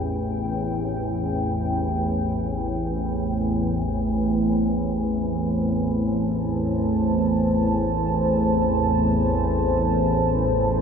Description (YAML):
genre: dark ambient drone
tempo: free time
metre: none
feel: none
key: A minor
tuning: A4 = 439 Hz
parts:
  - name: deep dark ambient pad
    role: sustained chords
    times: 0.0-10.8 s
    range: A3 to A5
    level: -23 LUFS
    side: right 1 dB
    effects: chorus, built-in reverb
  - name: organ-like drone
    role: drone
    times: 0.0-10.8 s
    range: A1 to E2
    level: -24 LUFS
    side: left 1 dB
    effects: ensemble chorus, built-in reverb
room: wet plate reverb, RT60 2.8 s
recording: none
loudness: -20 LUFS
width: side -6 dB against mid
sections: 0.0-10.8 A section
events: none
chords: 0.0 Am7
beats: free time